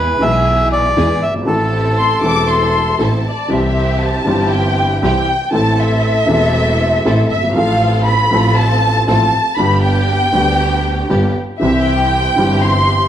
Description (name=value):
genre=tango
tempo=118 BPM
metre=4/4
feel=rubato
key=A minor, C major from 3.5 s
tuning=A4 = 439 Hz
part: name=bandoneon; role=melody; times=0.0-3.0 s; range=A4 to E5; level=-16 LUFS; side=equal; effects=slapback echo
part: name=dark upright piano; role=accompaniment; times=0.0-13.1 s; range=E1 to A4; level=-18 LUFS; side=left 1 dB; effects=none
part: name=dark studio string section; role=stabs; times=0.0-13.1 s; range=B3 to A4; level=-23 LUFS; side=right 2 dB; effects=none
part: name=dark double bass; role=bass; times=0.0-13.1 s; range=E1 to E2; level=-18 LUFS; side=right 1 dB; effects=none
part: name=warm studio violin section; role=second line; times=2.0-13.1 s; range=D5 to D6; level=-16 LUFS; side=left 1 dB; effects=none
room=wet large studio reverb, RT60 1.2 s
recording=none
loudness=-12 LUFS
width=side -10 dB against mid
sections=0.0-3.5 A section; 3.5-13.1 B section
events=violin section solo 3.5-13.1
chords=0.0 E; 1.5 Am; 3.5 C; 5.5 Am; 7.6 F/A; 9.6 G; 11.6 C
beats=0.46 0.97 | 1.47 1.98 2.49 3.00 | 3.51 4.02 4.52 5.03 | 5.54 6.04 6.55 7.06 | 7.56 8.07 8.57 9.08 | 9.59 10.09 10.60 11.11 | 11.62 12.12 12.63